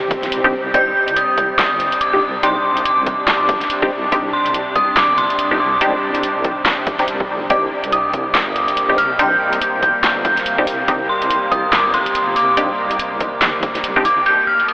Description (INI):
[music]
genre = deep dubstep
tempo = 142 BPM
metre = 4/4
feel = swing 59% on 16ths, half-time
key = C minor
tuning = A4 = 440 Hz
[part]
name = bowed-like drone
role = sustained chords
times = 0.0-14.7 s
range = C3 to G4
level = -24 LUFS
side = equal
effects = built-in reverb
[part]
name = deep soft wobble bass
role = bass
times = 0.0-14.2 s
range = G1 to Eb2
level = -29 LUFS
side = equal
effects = chorus, tube saturation
[part]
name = swell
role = sound effects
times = 0.1-0.7 s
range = none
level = -30 LUFS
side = right 1 dB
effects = none
[part]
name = deep house drum kit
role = drums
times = 0.1-14.7 s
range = handclaps, hi-hat, snare drum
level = -21 LUFS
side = equal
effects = overdrive, low-pass filter on hats, low-pass filter on snare
[part]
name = electronic kick drum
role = drums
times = 0.1-14.0 s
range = none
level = -23 LUFS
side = equal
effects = overdrive
[part]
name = filtered dub chord stab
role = stabs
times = 0.4-14.0 s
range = C4 to G4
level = -21 LUFS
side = equal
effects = phaser, dub echo
[part]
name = dark detuned synth bell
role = melody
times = 0.7-14.7 s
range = C6 to G6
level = -16 LUFS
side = equal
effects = chorus, phaser, dub echo
[sound]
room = wet huge ambient reverb, RT60 7.8 s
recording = dreamy mix soaked in reverb, telephone sound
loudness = -14 LUFS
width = side -22 dB against mid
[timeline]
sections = 0.0-14.3 A section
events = swell 0.1-0.7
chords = 0.0 Cmadd9